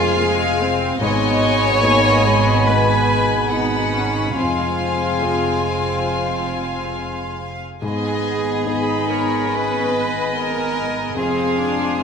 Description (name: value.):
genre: cinematic.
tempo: 71 BPM.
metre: 4/4.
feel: rubato.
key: unclear.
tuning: A4 = 441 Hz.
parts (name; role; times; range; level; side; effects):
warm studio violin section; melody; 0.0-12.0 s; Ab5 to B5; -29 LUFS; left 6 dB; none.
concert flute; second line; 0.0-12.0 s; B5 to C6; -27 LUFS; equal; none.
mellow clarinet; second line; 0.0-12.0 s; Ab5 to G#5; -28 LUFS; left 1 dB; none.
rich studio violin section; second line; 0.0-12.0 s; C#5 to G#5; -26 LUFS; left 3 dB; none.
dark studio viola section; accompaniment; 0.0-12.0 s; Ab3 to D#4; -27 LUFS; right 1 dB; none.
warm grand piano; accompaniment; 0.0-12.0 s; F2 to Ab4; -26 LUFS; left 2 dB; none.
mellow French horn section; sustained chords; 0.0-12.0 s; B2 to C4; -26 LUFS; left 4 dB; none.
dark studio double bass section; bass; 0.0-12.0 s; F1 to G#1; -25 LUFS; right 5 dB; none.
warm studio cello section; bass; 0.0-12.0 s; D#4 to C#5; -23 LUFS; right 1 dB; none.
room: moderate concert hall reverb, RT60 1.9 s.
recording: none.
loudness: -16 LUFS.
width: side -6 dB against mid.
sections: 0.0-12.0 A section.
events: none.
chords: 0.0 Fm; 1.0 G#m; 4.4 Fm; 7.8 G#m; 11.2 Fm.